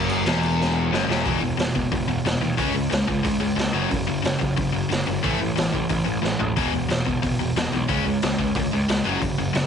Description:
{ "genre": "punk rock", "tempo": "181 BPM", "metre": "4/4", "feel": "straight", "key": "E major", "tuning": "A4 = 442 Hz", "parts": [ { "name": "biting overdriven guitar", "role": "riff", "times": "0.0-9.7 s", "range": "E2 to C#4", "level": "-25 LUFS", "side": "left 10 dB", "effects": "none" }, { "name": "sludgy distorted guitar", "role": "riff", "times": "0.0-9.7 s", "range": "E2 to C#4", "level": "-27 LUFS", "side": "right 12 dB", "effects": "overdrive" }, { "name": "fuzz picked electric bass", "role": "bass", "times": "0.0-9.7 s", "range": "E1 to D#2", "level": "-28 LUFS", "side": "right 1 dB", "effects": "overdrive" }, { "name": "raw garage drum kit", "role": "drums", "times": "0.1-9.6 s", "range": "crash cymbal, hi-hat, kick drum, snare drum, toms", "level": "-26 LUFS", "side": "right 1 dB", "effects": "none" } ], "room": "light reverb", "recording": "heavily compressed radio sound, multiband compression, nothing above 10.6 kHz", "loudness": "-20 LUFS", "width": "side -7 dB against mid", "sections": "0.0-1.3 A section; 1.3-9.7 B section", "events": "drum fill 0.6-1.3, 6.2-6.6", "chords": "0.0 E5; 2.6 C#5; 3.7 F#5; 5.2 A5; 6.6 E5; 7.9 C#5; 9.1 F#5" }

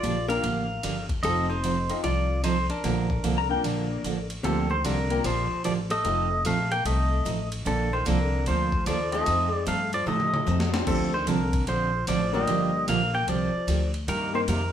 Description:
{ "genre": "country, western swing", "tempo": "150 BPM", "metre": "4/4", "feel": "swing 65% on 8ths", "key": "unclear", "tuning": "A4 = 440 Hz", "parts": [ { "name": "pedal steel guitar", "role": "melody", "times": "0.0-14.7 s", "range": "A4 to G5", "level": "-28 LUFS", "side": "right 1 dB", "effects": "none" }, { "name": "archtop guitar, miked and amplified", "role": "second line", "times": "0.0-14.7 s", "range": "C3 to Bb4", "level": "-33 LUFS", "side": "left 2 dB", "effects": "none" }, { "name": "picked steel-string acoustic guitar", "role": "accompaniment", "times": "0.0-14.6 s", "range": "C3 to A4", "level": "-30 LUFS", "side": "right 5 dB", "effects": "none" }, { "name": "upright bass", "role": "bass", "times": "0.0-14.7 s", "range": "F1 to A2", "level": "-29 LUFS", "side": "left 1 dB", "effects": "none" }, { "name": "breakbeat sampler-style drum kit", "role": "drums", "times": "0.0-14.6 s", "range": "crash cymbal, hi-hat, kick drum, ride cymbal, snare drum, toms", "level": "-34 LUFS", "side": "left 1 dB", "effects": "none" }, { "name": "bright upright piano", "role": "accompaniment", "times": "0.3-6.3, 9.1-14.5 s", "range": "D3 to Eb5", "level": "-32 LUFS", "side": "left 6 dB", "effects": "none" }, { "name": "clean lap steel guitar", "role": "second line", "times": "3.4-4.4 s", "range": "D5 to Bb5", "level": "-30 LUFS", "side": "left 7 dB", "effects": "none" } ], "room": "wet studio reverb, RT60 0.8 s", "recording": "band playing live in one room", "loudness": "-23 LUFS", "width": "side -9 dB against mid", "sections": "0.0-4.4 A section; 4.4-14.7 B section", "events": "drum fill 10.1-10.9", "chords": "0.0 Gm7; 1.2 F7; 2.8 Bbmaj7; 4.4 Gm11; 6.1 F7; 7.7 Bbmaj7; 9.3 F7; 10.9 Dm7; 12.5 Gm7; 14.1 Cm7" }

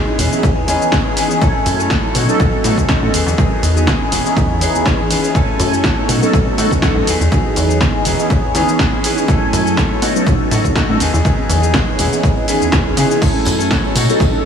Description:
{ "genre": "filtered disco house", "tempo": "122 BPM", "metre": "4/4", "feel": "swing 54% on 16ths", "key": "C# minor", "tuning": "A4 = 440 Hz", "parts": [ { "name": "mellow synth brass", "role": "accompaniment", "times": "0.0-14.4 s", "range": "E3 to G#5", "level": "-17 LUFS", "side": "right 1 dB", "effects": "chorus, phaser, sidechain pumping" }, { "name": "direct-recorded clean electric guitar", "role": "riff", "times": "0.0-14.5 s", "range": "D#3 to A4", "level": "-22 LUFS", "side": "left 5 dB", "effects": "sidechain pumping" }, { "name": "plucky analog bass", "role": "bass", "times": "0.2-14.3 s", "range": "E1 to C#3", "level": "-18 LUFS", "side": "equal", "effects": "sidechain pumping" }, { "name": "punchy analog drum machine", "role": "drums", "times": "0.2-14.3 s", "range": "cabasa, crash cymbal, hi-hat, snare drum", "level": "-20 LUFS", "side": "equal", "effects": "sidechain pumping on perc, sidechain pumping on cymbals, sidechain pumping on hats" }, { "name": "electronic kick drum", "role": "drums", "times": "0.4-14.3 s", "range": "none", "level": "-17 LUFS", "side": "equal", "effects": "none" }, { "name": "tambourine", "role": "percussion", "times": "13.2-14.4 s", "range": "none", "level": "-27 LUFS", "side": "equal", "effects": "sidechain pumping on perc" } ], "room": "moderate huge ambient reverb, RT60 7.1 s", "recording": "dreamy mix soaked in reverb, small room ambience", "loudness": "-12 LUFS", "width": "side -7 dB against mid", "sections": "0.0-14.5 A section", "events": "none", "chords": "0.2 C#m7/E; 1.4 F#m7; 2.2 B7; 3.1 Emaj7; 4.1 C#m7/E; 5.3 F#m7; 6.1 B7; 7.1 Emaj7; 8.1 C#m7/E; 9.3 F#m7; 10.0 B7; 11.0 Emaj7; 12.0 C#m7/E; 13.2 F#m7" }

